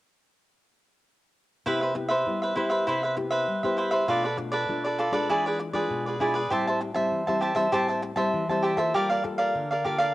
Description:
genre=samba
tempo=99 BPM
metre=4/4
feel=straight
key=C major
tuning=A4 = 438 Hz
part: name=cavaquinho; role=accompaniment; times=1.7-10.1 s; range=E4 to A5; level=-24 LUFS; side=right 1 dB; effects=cassette tape
part: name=nylon-string guitar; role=accompaniment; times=1.7-10.1 s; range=A2 to A4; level=-30 LUFS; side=left 3 dB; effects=cassette tape
room=moderate spring reverb, RT60 1.9 s, small room ambience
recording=home recording on cassette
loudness=-24 LUFS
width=side -17 dB against mid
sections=1.7-10.1 A section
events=none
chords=1.7 Cmaj7; 4.1 Bm7b5; 5.3 E7b9; 6.5 Am7; 8.9 Gm9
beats=| 1.66 2.27 2.87 3.48 | 4.09 4.70 5.30 5.91 | 6.52 7.13 7.73 8.34 | 8.95 9.55

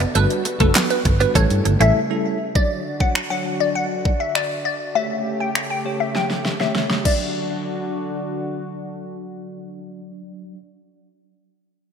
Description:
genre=dance-pop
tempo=100 BPM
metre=4/4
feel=straight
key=D major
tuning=A4 = 440 Hz
part: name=warm analog pad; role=sustained chords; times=0.0-10.5 s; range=C#3 to A4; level=-30 LUFS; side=equal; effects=chorus, sidechain pumping, low-pass filter
part: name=twelve-string electric guitar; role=riff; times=0.0-1.9 s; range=A3 to C#4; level=-26 LUFS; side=right 7 dB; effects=ensemble chorus
part: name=vintage muted fingered electric bass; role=bass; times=0.0-1.9 s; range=F#1 to G2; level=-18 LUFS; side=equal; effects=sidechain pumping
part: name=pop drum kit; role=drums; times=0.0-7.2 s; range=crash cymbal, finger snaps, handclaps, hi-hat, kick drum, snare drum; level=-21 LUFS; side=equal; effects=overdrive
part: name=glassy wavetable pluck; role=melody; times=0.1-9.1 s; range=A4 to G5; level=-23 LUFS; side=left 2 dB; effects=chorus, sidechain pumping, low-pass filter, digital delay
part: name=bell-like tine electric piano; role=accompaniment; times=0.2-10.6 s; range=F#3 to D5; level=-28 LUFS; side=equal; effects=medium stereo tremolo, sidechain pumping, low-pass filter
part: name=group handclap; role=percussion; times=0.8-0.9 s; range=none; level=barely audible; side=none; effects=none
room=moderate lush hall reverb, RT60 2.6 s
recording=bright 1980s-style digital production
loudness=-18 LUFS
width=side -7 dB against mid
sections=0.0-2.6 A section; 2.6-7.4 B section; 7.4-9.8 C section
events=drop 0.0-2.6; break 2.0-2.6; drum fill 6.2-7.4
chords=0.2 Gmaj7; 1.4 A7; 2.6 Dmaj7; 5.0 A7; 7.1 D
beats=| 0.15 0.75 1.35 1.95 | 2.55 3.15 3.75 4.35 | 4.95 5.55 6.15 6.75 | 7.35 7.95 8.55 9.15

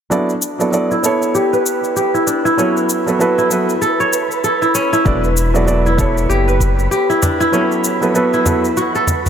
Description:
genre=organic downtempo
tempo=97 BPM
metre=4/4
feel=swing 59% on 16ths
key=E dorian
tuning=A4 = 440 Hz
part: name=felt-muted upright piano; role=accompaniment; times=0.1-8.7 s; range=F#3 to D5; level=-18 LUFS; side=right 2 dB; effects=sidechain pumping, digital delay, shimmer reverb
part: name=kora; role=arpeggios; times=0.1-9.3 s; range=C#4 to C#5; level=-17 LUFS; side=left 1 dB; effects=vintage 12-bit sampler grit, low-pass filter, digital delay, shimmer reverb
part: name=shaker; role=drums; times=0.1-9.3 s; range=none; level=-23 LUFS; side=left 3 dB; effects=none
part: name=wind-like tuned noise texture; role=texture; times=0.9-9.3 s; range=B4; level=-24 LUFS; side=right 4 dB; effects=built-in reverb, shimmer reverb
part: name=warm sub bass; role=bass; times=5.1-6.9 s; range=E1 to F#1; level=-16 LUFS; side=left 1 dB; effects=none
part: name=electronic kick drum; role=drums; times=5.1-6.8 s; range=none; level=-18 LUFS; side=left 1 dB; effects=none
part: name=frame drum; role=percussion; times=6.0-9.3 s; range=none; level=-19 LUFS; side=equal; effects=none
room=moderate huge ambient reverb, RT60 4.1 s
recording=none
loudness=-13 LUFS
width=side -8 dB against mid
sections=0.1-9.3 A section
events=filter sweep on kora 0.1-9.3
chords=0.1 Em7; 2.6 A; 5.1 Em7; 7.5 F#m7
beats=| 0.11 0.73 1.35 1.97 | 2.58 3.20 3.82 4.44 | 5.06 5.68 6.29 6.91 | 7.53 8.15 8.77

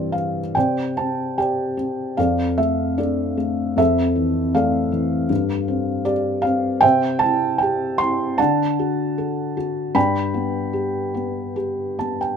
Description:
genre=classical, lyrical solo piano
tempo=77 BPM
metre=4/4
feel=uneven beats, rubato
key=C major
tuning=A4 = 440 Hz
part: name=felt-muted upright piano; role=solo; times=0.0-12.4 s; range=F2 to C6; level=-18 LUFS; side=equal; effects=none
room=light reverb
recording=minimal, uncompressed stereo recording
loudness=-18 LUFS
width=side -7 dB against mid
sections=0.6-12.4 A section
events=felt piano fill 11.6-12.4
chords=0.0 C; 0.6 Csus2; 2.2 F6; 5.3 Gsus4; 6.8 C; 8.4 D; 10.0 G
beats=| 0.56 1.38 2.18 2.99 | 3.78 4.55 5.30 6.07 | 6.84 7.61 8.39 9.18 | 9.96 10.74 11.56

